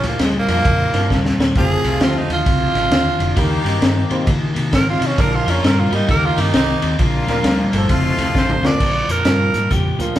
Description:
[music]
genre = electric blues shuffle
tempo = 132 BPM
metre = 4/4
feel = swing 64% on 8ths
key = Bb major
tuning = A4 = 440 Hz
[part]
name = growling tenor saxophone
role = melody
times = 0.0-10.2 s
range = Ab3 to D5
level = -20 LUFS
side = right 3 dB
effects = none
[part]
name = clear upright piano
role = accompaniment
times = 0.0-10.1 s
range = F3 to C5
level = -26 LUFS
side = right 1 dB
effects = none
[part]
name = electric guitar at the edge of break-up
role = riff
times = 0.0-10.2 s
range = F2 to C4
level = -22 LUFS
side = left 3 dB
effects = none
[part]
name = vintage muted fingered electric bass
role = bass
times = 0.0-10.2 s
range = F1 to C3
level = -22 LUFS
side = equal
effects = none
[part]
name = crunchy breakbeat drum kit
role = drums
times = 0.0-10.2 s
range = crash cymbal, hi-hat, kick drum, ride cymbal, snare drum, toms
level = -18 LUFS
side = equal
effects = none
[part]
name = bright horn section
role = stabs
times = 1.6-8.7 s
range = A3 to G4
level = -25 LUFS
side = left 2 dB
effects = none
[sound]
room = moderate large studio reverb, RT60 1.2 s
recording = band playing live in one room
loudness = -14 LUFS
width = side -12 dB against mid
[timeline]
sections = 0.0-8.8 A section; 8.8-10.2 B section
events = tenor saxophone solo 0.0-8.8; drum fill 1.1-1.6, 8.3-8.8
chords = 0.0 Bb; 1.6 F; 3.4 Eb; 5.2 Bb; 6.1 Eb; 7.0 Bb; 7.9 F; 8.8 Bb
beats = 0.20 0.65 1.10 | 1.56 2.01 2.46 2.91 | 3.37 3.82 4.27 4.73 | 5.18 5.63 6.08 6.54 | 6.99 7.44 7.90 8.35 | 8.80 9.26 9.71 10.17

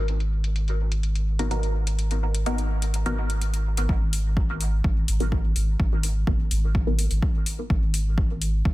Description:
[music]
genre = dub techno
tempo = 126 BPM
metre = 4/4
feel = straight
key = G# minor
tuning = A4 = 441 Hz
[part]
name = soft dub sub bass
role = bass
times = 0.0-8.7 s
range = G#1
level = -24 LUFS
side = equal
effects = sidechain pumping
[part]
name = electronic hi-hat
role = drums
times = 0.1-8.5 s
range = none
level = -33 LUFS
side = left 3 dB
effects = overdrive, studio reverb
[part]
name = filtered dub chord stab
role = stabs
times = 1.4-7.0 s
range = B3 to A#4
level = -32 LUFS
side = left 1 dB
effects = phaser, sidechain pumping, dub echo
[part]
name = electronic kick drum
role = drums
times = 3.9-8.7 s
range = none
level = -24 LUFS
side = equal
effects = overdrive, studio reverb
[sound]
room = digital ambience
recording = dense, heavily limited modern master, low-pass filter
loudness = -22 LUFS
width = side -18 dB against mid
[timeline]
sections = 0.0-3.9 A section; 3.9-8.7 B section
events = filter sweep 0.0-3.9; filter sweep on synth stab 3.9-8.7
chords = 0.0 G#m7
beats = | 0.08 0.56 1.03 1.51 | 1.99 2.46 2.94 3.42 | 3.89 4.37 4.84 5.32 | 5.80 6.27 6.75 7.22 | 7.70 8.18 8.65

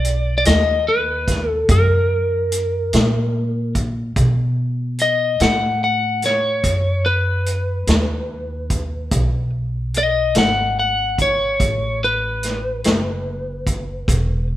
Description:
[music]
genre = slow blues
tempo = 48 BPM (dotted quarters)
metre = 12/8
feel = straight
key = unclear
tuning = A4 = 440 Hz
[part]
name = lightly driven lead guitar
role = melody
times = 0.0-14.5 s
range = A#4 to F#5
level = -19 LUFS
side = left 1 dB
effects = none
[part]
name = upright bass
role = bass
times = 0.0-14.6 s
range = E1 to B2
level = -21 LUFS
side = equal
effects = none
[part]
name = vintage drum kit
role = drums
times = 0.0-14.3 s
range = hi-hat, kick drum, snare drum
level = -20 LUFS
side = equal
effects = none
[sound]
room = moderate stone room reverb, RT60 1.1 s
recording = band playing live in one room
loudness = -16 LUFS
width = side -14 dB against mid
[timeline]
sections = 0.0-4.2 A section; 4.2-14.6 B section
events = lead electric guitar solo 4.2-14.6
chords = 0.0 B; 1.7 F#; 4.2 B7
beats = 0.45 1.69 2.93 | 4.17 5.41 6.64 7.88 | 9.12 10.36 11.60 12.84 | 14.08

